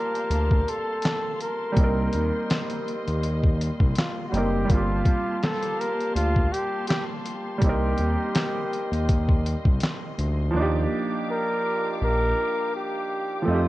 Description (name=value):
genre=lo-fi hip hop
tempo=82 BPM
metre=4/4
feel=swing 55% on 16ths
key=unclear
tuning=A4 = 440 Hz
part: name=breathy flugelhorn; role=melody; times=0.0-13.7 s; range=F4 to Bb4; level=-28 LUFS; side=equal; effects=low-pass filter, tape echo
part: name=felt-muted upright piano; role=accompaniment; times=0.0-13.7 s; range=F3 to Bb4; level=-29 LUFS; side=right 2 dB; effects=cassette tape, low-pass filter
part: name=warm studio string section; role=sustained chords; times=0.0-13.7 s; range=Bb3 to Eb6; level=-37 LUFS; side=left 2 dB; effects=low-pass filter
part: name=lo-fi sampler-style drum kit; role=drums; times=0.1-10.4 s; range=handclaps, hi-hat, kick drum, snare drum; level=-24 LUFS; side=equal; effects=vintage 12-bit sampler grit
part: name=smooth gliding synth bass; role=bass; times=0.3-13.7 s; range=F#1 to F2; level=-25 LUFS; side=equal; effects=none
room=light reverb, studio ambience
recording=cassette tape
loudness=-22 LUFS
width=side -17 dB against mid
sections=0.0-10.6 A section; 10.6-13.7 B section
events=none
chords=0.0 Gm11; 1.8 Cm7; 4.7 Gm11; 7.6 Cm7; 10.6 Ebmaj9